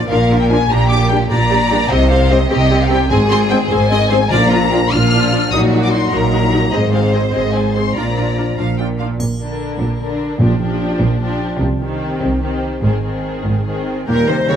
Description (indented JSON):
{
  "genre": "cinematic, heroic adventure film score",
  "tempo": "99 BPM (dotted quarters)",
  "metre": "6/8",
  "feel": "straight",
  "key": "Bb mixolydian",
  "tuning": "A4 = 442 Hz",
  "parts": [
    { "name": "rich symphonic violin section", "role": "second line", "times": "0.0-14.6 s", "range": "C4 to G5", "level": "-21 LUFS", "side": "left 2 dB", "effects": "none" },
    { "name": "dark symphonic violin section", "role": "melody", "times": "0.1-14.6 s", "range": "G4 to F6", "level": "-21 LUFS", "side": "left 3 dB", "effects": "none" },
    { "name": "rich symphonic viola section", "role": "accompaniment", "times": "0.1-14.6 s", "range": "D3 to Ab4", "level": "-23 LUFS", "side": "right 1 dB", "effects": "none" },
    { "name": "rich symphonic cello section", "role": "bass", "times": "0.1-14.6 s", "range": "Ab2 to Db3", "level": "-19 LUFS", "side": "right 1 dB", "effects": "none" },
    { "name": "rich symphonic double bass section", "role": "bass", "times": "0.1-14.6 s", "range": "Ab1 to Eb2", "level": "-19 LUFS", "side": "right 2 dB", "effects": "none" },
    { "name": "dark French horn section", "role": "sustained chords", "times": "0.5-9.0, 14.1-14.6 s", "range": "F3 to Eb4", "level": "-21 LUFS", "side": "left 4 dB", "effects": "none" },
    { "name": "timpani", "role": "percussion", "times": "4.3-4.9, 10.4-11.0 s", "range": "Bb2", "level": "-22 LUFS", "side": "right 1 dB", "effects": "none" },
    { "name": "triangle", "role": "percussion", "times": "9.2-10.0 s", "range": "none", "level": "-37 LUFS", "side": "left 2 dB", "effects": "none" },
    { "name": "clear oboe", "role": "second line", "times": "14.1-14.6 s", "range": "Bb5", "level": "-31 LUFS", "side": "right 4 dB", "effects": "none" },
    { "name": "silver concert flute", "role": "second line", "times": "14.1-14.6 s", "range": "G6", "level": "-25 LUFS", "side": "left 4 dB", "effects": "none" }
  ],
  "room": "light reverb",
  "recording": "none",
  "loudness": "-13 LUFS",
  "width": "side -8 dB against mid",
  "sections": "0.0-9.2 A section; 9.2-14.1 B section",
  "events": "none",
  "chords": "0.0 Bb; 0.7 Gm/Bb; 1.9 C5; 3.1 Ab; 4.3 Bb; 5.5 Ebm/Bb; 6.7 Ab; 8.0 Bb; 10.4 Gm7/Bb; 11.6 Cm; 12.8 Ab"
}